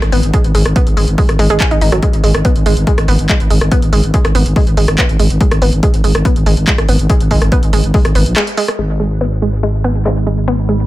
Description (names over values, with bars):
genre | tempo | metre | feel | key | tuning
driving peak-time techno | 142 BPM | 4/4 | straight | G# minor | A4 = 440 Hz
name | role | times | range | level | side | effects
growling FM bass | bass | 0.0-10.9 s | G#1 to A#1 | -14 LUFS | equal | sidechain pumping
punchy analog drum machine | drums | 0.0-10.1 s | handclaps, hi-hat, rim click | -19 LUFS | equal | low-pass filter on hats, low-pass filter on snare
analog pluck | riff | 0.1-10.7 s | F#3 to G#4 | -18 LUFS | equal | chorus, sidechain pumping, dub echo
electronic kick drum | drums | 0.3-8.0 s | none | -13 LUFS | equal | none
metallic inharmonic drone | drone | 9.6-10.9 s | G#2 | -21 LUFS | right 2 dB | chorus, built-in reverb, phaser, sidechain pumping
room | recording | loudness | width
digital ambience | none | -10 LUFS | side -16 dB against mid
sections
0.0-8.8 A section; 8.8-10.9 B section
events
break 8.4-8.8; band accent 8.4; filter sweep on synth arpeggio sound 8.8-10.9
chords
0.0 G#m